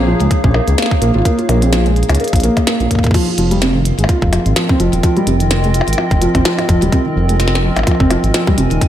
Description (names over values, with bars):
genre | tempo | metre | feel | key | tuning
IDM | 127 BPM | 4/4 | swing 56% on 16ths | F minor | A4 = 440 Hz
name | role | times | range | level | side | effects
warbly tape-like pad | sustained chords | 0.0-8.9 s | Bb3 to Ab5 | -20 LUFS | equal | chorus, built-in reverb
felt-muted upright piano | arpeggios | 0.0-8.8 s | C3 to Bb4 | -17 LUFS | equal | digital delay
dark detuned saw bass | bass | 0.0-8.8 s | Eb1 to Db2 | -15 LUFS | equal | none
glitchy drum kit | drums | 0.2-8.9 s | crash cymbal, hi-hat, percussion blips, snare drum | -20 LUFS | left 1 dB | none
electronic kick drum | drums | 0.3-8.9 s | none | -15 LUFS | equal | none
room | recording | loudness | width
light reverb | none | -11 LUFS | side -11 dB against mid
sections
0.0-8.9 A section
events
none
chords
0.0 Bbm11; 3.1 Fm11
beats
0.31 0.78 | 1.25 1.73 2.20 2.67 | 3.15 3.62 4.09 4.56 | 5.03 5.51 5.98 6.45 | 6.92 7.40 7.87 8.34 | 8.81